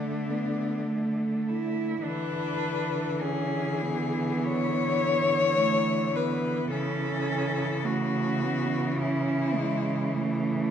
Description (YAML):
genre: classical, lyrical piece for cello ensemble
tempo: 53 BPM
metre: 4/4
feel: rubato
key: A major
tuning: A4 = 440 Hz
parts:
  - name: rich cello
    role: melody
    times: 0.0-10.7 s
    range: D4 to C#5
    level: -30 LUFS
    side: left 5 dB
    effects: none
  - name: warm cello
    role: second line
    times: 0.0-10.7 s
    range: G#3 to E4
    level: -30 LUFS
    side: right 5 dB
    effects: none
  - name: rich cello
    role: accompaniment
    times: 0.0-10.7 s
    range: E3 to A3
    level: -32 LUFS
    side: left 2 dB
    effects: none
  - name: rich cello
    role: bass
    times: 0.0-10.7 s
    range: C#3 to D3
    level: -32 LUFS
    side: right 2 dB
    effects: none
room: wet recital hall reverb, RT60 1.7 s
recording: dark, warm production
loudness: -25 LUFS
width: side -8 dB against mid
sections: 0.0-10.7 A section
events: none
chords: 0.0 D5; 2.1 E7/D; 6.7 A/C#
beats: 0.92 | 2.06 3.21 4.46 5.60 | 6.72 7.86 9.00 10.13